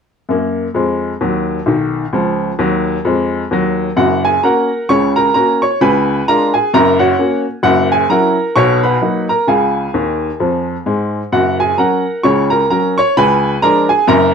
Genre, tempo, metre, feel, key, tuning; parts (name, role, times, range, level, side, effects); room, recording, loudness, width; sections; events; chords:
jazz, stride piano; 130 BPM; 4/4; swing 59% on 8ths; F# major; A4 = 440 Hz
clear upright piano; solo; 0.3-14.3 s; F#1 to C#6; -12 LUFS; equal; slapback echo
light reverb; dry, close 1970s-style studio recording; -12 LUFS; side -6 dB against mid
0.3-4.0 A section; 4.0-14.3 B section
upright piano fill 9.9-11.3
0.3 F#; 2.1 C#add9; 4.0 F#; 5.8 C#7b9; 6.7 F#; 7.7 F#7; 8.6 Bmaj7; 9.5 C#; 11.3 F#; 13.2 C#7b9